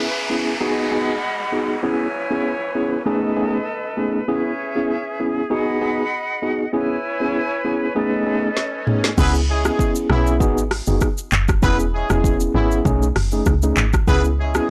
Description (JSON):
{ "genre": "afrobeats", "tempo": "98 BPM", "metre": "4/4", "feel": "swing 55% on 16ths", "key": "C# minor", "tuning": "A4 = 441 Hz", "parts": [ { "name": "mellow tine electric piano", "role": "accompaniment", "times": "0.0-14.7 s", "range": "A3 to G#4", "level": "-24 LUFS", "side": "equal", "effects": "plate reverb" }, { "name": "bright small flute group", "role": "sustained chords", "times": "0.0-9.2 s", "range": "C#4 to B5", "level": "-27 LUFS", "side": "equal", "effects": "none" }, { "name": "downlifter and swell", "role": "sound effects", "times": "0.0-9.2 s", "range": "none", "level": "-32 LUFS", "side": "equal", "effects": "none" }, { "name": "afro-pop drum kit", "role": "drums", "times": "8.6-14.7 s", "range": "crash cymbal, handclaps, hi-hat, kick drum, rim click, shaker, snare drum, toms", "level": "-23 LUFS", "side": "equal", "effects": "none" }, { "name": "warm horn section", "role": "second line", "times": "9.2-14.7 s", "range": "E3 to B4", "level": "-26 LUFS", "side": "equal", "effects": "plate reverb" }, { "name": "deep log drum bass", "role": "bass", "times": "9.2-14.6 s", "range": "E1 to C#2", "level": "-22 LUFS", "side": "equal", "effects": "none" } ], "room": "light reverb", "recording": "blown-out, overdriven recording, overdrive", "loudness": "-20 LUFS", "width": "mono", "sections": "0.0-9.2 A section; 9.2-14.7 B section", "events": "drum fill 8.6-9.2", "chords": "0.0 C#m7; 0.6 G#m7; 1.8 E6; 3.1 B13; 4.3 C#m7; 5.5 G#m7; 6.7 E6; 8.0 B13; 9.2 C#m7; 10.4 G#m7; 11.6 E6; 12.9 B13; 14.1 C#m7" }